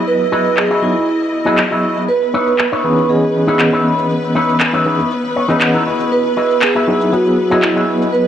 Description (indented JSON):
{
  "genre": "nu-disco, nu disco",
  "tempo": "119 BPM",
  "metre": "4/4",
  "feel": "straight",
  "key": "unclear",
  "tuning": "A4 = 437 Hz",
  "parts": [
    { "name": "tine electric piano", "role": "accompaniment", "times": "0.0-8.3 s", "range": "E3 to D#5", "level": "-18 LUFS", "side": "equal", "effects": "medium tremolo, analog delay" },
    { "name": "rich studio string section", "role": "sustained chords", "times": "0.0-8.3 s", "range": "B3 to D#5", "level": "-22 LUFS", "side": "left 1 dB", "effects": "low-pass filter" },
    { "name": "vibraphone with soft mallets", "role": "melody", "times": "0.1-8.3 s", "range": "E4 to B4", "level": "-16 LUFS", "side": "right 3 dB", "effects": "vintage 12-bit sampler grit, tape echo" },
    { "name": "electronic shaker and handclaps", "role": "drums", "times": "0.1-8.2 s", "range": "none", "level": "-18 LUFS", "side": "left 1 dB", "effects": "low-pass filter on perc, small room reverb, low-pass filter on snare" },
    { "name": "electric guitar with an envelope filter", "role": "riff", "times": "0.3-8.1 s", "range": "D#4 to F#5", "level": "-18 LUFS", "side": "left 2 dB", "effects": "lush chorus, analog delay" }
  ],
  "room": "moderate spring reverb, RT60 1.7 s, digital ambience",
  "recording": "echo-heavy mix",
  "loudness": "-12 LUFS",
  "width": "side -10 dB against mid",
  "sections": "0.0-8.3 A section",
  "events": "clean electric guitar fill 5.1-6.1",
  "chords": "0.0 Emaj9; 2.1 C#m9; 5.9 Emaj9"
}